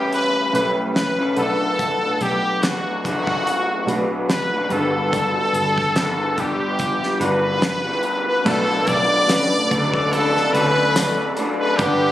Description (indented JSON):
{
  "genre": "indie pop, bedroom pop",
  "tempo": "72 BPM",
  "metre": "4/4",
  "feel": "swing 55% on 16ths",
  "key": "unclear",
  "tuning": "A4 = 440 Hz",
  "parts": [
    { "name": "brilliant trumpet", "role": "melody", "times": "0.0-12.1 s", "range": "F#4 to D5", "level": "-20 LUFS", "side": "equal", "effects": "analog chorus, slapback echo" },
    { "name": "electric guitar through a small old amp", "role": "accompaniment", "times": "0.0-12.1 s", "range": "G2 to B4", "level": "-24 LUFS", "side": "left 2 dB", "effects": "lush chorus, warbly pitch drift" },
    { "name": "warm analog keys", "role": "accompaniment", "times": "0.0-12.1 s", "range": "G3 to F#5", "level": "-25 LUFS", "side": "right 1 dB", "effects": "chorus, cassette tape" },
    { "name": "vintage muted fingered electric bass", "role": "bass", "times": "0.0-12.1 s", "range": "G1 to D2", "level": "-29 LUFS", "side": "equal", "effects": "none" },
    { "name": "damped 70s drum kit", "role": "drums", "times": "0.1-12.0 s", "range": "crash cymbal, hi-hat, kick drum, snare drum", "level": "-24 LUFS", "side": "equal", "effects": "none" },
    { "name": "ethereal airy pad", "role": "sustained chords", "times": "9.2-12.1 s", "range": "A4 to B5", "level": "-26 LUFS", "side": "equal", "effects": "ensemble chorus, built-in reverb" },
    { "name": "tambourine", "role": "percussion", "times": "9.3-11.2 s", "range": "none", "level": "-31 LUFS", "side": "left 1 dB", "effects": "none" }
  ],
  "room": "light reverb",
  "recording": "recorded on a phone in the room, studio reverb, compression",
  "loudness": "-17 LUFS",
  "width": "side -13 dB against mid",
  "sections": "0.0-8.5 A section; 8.5-12.1 B section",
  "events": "none",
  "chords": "0.0 A9; 1.4 Bm7; 4.7 Gmaj7; 8.5 Bm7",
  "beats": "0.13 0.96 | 1.79 2.63 3.46 4.29 | 5.13 5.96 6.79 7.63 | 8.46 9.29 10.12 10.96 | 11.79"
}